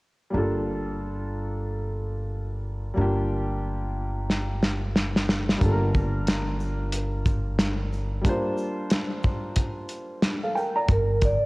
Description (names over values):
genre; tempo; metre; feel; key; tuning
hip hop, jazz-hop; 91 BPM; 4/4; swing 62% on 16ths; G minor; A4 = 436 Hz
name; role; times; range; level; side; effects
dark baby grand piano; accompaniment; 0.3-10.9 s; G3 to Bb5; -30 LUFS; equal; cassette tape
upright bass; bass; 0.3-11.3 s; G1; -28 LUFS; equal; none
cloth-damped thuddy drum kit; drums; 4.3-11.4 s; hi-hat, kick drum, shaker, snare drum; -25 LUFS; equal; cassette tape
vibraphone with soft mallets; melody; 10.9-11.4 s; Bb4 to D5; -23 LUFS; right 1 dB; cassette tape
room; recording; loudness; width
light reverb, small room ambience; home recording on cassette; -24 LUFS; side -24 dB against mid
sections
0.3-10.9 A section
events
drum fill 4.3-5.6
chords
0.3 Gm9; 10.9 Gm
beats
| 0.34 1.00 1.66 2.31 | 2.98 3.63 4.29 4.95 | 5.61 6.27 6.93 7.59 | 8.25 8.91 9.57 10.23 | 10.89